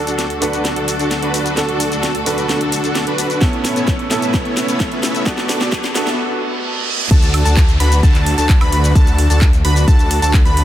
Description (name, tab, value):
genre	EDM, festival progressive house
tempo	130 BPM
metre	4/4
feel	straight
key	D major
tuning	A4 = 440 Hz
part	bright baby grand piano	accompaniment	0.0-7.1 s	A3 to A4	-23 LUFS	right 2 dB	sidechain pumping, dub echo
part	bright studio string section	sustained chords	0.0-7.1 s	D2 to B4	-26 LUFS	left 1 dB	sidechain pumping
part	dense compressed supersaw	riff	0.0-10.6 s	B3 to E5	-20 LUFS	equal	sidechain pumping, low-pass filter, dub echo
part	riser, reverse cymbal and downlifter	sound effects	4.0-10.6 s	none	-27 LUFS	right 2 dB	none
part	house drum kit	drums	0.1-10.6 s	crash cymbal, handclaps, hi-hat, shaker, snare drum, woodblock	-22 LUFS	equal	none
part	electronic kick drum	drums	3.4-10.4 s	none	-12 LUFS	equal	none
part	plucky unison lead	arpeggios	7.1-10.6 s	A5 to B5	-21 LUFS	equal	sidechain pumping, dub echo
part	detuned saw bass	bass	7.1-10.6 s	D2	-15 LUFS	equal	sidechain pumping
room	light reverb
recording	dense, heavily limited modern master, high-pass filter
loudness	-13 LUFS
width	side -12 dB against mid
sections	0.0-7.1 A section; 7.1-10.6 B section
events	build-up 0.0-7.1; drum fill 0.0-6.2; break 6.2-7.1; reverse cymbal 6.2-7.1; drop 7.1-10.6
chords	0.0 D; 3.4 Aadd9; 5.3 Bm7; 7.1 D